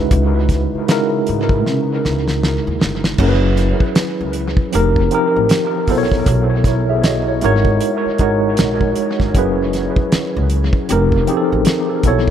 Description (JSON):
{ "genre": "R&B, neo-soul", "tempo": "78 BPM", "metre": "4/4", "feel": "swing 59% on 16ths", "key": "unclear", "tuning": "A4 = 439 Hz", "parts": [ { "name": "tine electric piano", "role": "accompaniment", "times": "0.0-12.3 s", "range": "B2 to E5", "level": "-16 LUFS", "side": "equal", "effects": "overdrive, fast stereo tremolo, dub echo" }, { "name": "upright bass", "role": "bass", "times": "0.0-12.3 s", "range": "F1 to C#3", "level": "-18 LUFS", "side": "equal", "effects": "none" }, { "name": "damped 70s drum kit", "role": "drums", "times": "0.1-12.3 s", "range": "crash cymbal, hi-hat, kick drum, snare drum", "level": "-18 LUFS", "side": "equal", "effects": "dub echo" } ], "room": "light reverb", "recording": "echo-heavy mix", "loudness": "-14 LUFS", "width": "side -9 dB against mid", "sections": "0.0-3.2 A section; 3.2-12.3 B section", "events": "drum fill 1.7-3.2", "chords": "0.0 C#m11; 3.2 F#9sus4; 4.7 F9sus4; 5.9 B9sus4; 7.4 G#9sus4; 9.3 F#9sus4; 10.9 F9sus4", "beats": "| 0.11 0.88 1.65 2.42 | 3.19 3.96 4.73 5.50 | 6.27 7.04 7.81 8.58 | 9.35 10.11 10.88 11.65" }